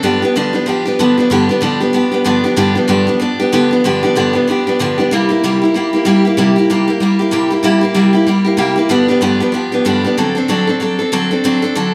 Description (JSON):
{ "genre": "rock", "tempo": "189 BPM", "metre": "4/4", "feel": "swing 59% on 8ths", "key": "G mixolydian", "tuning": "A4 = 439 Hz", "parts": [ { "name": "picked steel-string acoustic guitar", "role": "solo", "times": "0.0-11.9 s", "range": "G2 to A4", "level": "-14 LUFS", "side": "equal", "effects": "none" } ], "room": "wet large studio reverb, RT60 1.4 s", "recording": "band playing live in one room", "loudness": "-14 LUFS", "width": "mono", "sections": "0.0-11.9 A section", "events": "none", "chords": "0.0 G7; 5.1 C7; 8.9 G7; 10.2 D7" }